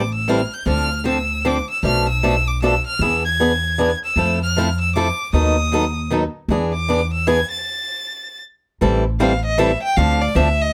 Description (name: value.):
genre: acoustic string swing (jazz manouche).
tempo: 155 BPM.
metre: 3/4.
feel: swing 63% on 8ths.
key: A minor.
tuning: A4 = 440 Hz.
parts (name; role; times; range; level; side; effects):
clear violin; melody; 0.0-10.7 s; D5 to A6; -24 LUFS; equal; none.
upright bass; bass; 0.0-10.7 s; A1 to F2; -23 LUFS; equal; none.
picked swing-style acoustic guitar; accompaniment; 0.3-10.5 s; B2 to A4; -22 LUFS; equal; none.
room: light reverb.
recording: none.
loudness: -19 LUFS.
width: mono.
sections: 0.0-8.8 A section; 8.8-10.7 B section.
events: stop 7.7-8.8; violin solo 8.8-10.7.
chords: 0.0 Am7; 0.7 Dm7; 1.8 Bm7b5; 3.0 E7; 4.2 Fmaj7; 5.3 B7/D#; 6.5 E7; 7.7 N.C.; 8.8 Am7; 10.0 Dm7.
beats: 0.28 | 0.67 1.05 1.44 | 1.83 2.22 2.61 | 3.00 3.39 3.78 | 4.17 4.55 4.94 | 5.33 5.72 6.11 | 6.49 6.88 7.27 | 7.66 8.04 8.43 | 8.82 9.20 9.59 | 9.98 10.36.